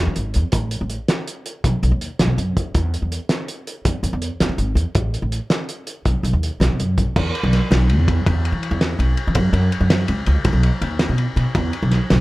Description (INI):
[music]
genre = highlife guitar band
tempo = 109 BPM (dotted quarters)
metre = 12/8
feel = straight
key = E major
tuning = A4 = 440 Hz
[part]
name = upright bass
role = bass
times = 0.0-12.2 s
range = G#1 to E3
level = -18 LUFS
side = equal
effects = none
[part]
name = cloth-damped thuddy drum kit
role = drums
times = 0.2-12.2 s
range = crash cymbal, hi-hat, kick drum, ride cymbal, snare drum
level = -21 LUFS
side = equal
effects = none
[sound]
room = little or no reverb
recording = none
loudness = -17 LUFS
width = side -19 dB against mid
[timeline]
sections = 0.0-7.2 A section; 7.2-12.2 B section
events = none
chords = none